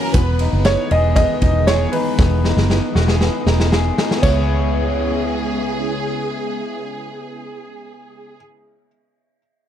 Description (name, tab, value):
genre	jangly indie pop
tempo	118 BPM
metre	4/4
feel	straight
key	C# minor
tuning	A4 = 442 Hz
part	warm studio violin section	second line	0.0-0.5, 4.2-8.4 s	G#4 to B4	-28 LUFS	right 1 dB	none
part	soft string machine	sustained chords	0.0-8.4 s	C#3 to E4	-27 LUFS	equal	phaser, ensemble chorus
part	electric guitar through a small old amp	arpeggios	0.0-8.5 s	E3 to G#4	-24 LUFS	left 3 dB	none
part	vintage muted fingered electric bass	bass	0.1-8.4 s	E1 to C#2	-18 LUFS	equal	none
part	raw garage drum kit	drums	0.1-4.3 s	crash cymbal, hi-hat, kick drum, ride cymbal, snare drum	-20 LUFS	equal	none
part	warm upright piano	melody	0.7-8.4 s	B4 to D#5	-22 LUFS	right 1 dB	tape echo
room	small room reverb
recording	none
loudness	-15 LUFS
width	side -10 dB against mid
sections	0.0-4.2 A section; 4.2-8.3 B section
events	drum fill 2.2-4.2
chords	0.1 Emaj7; 4.2 C#m7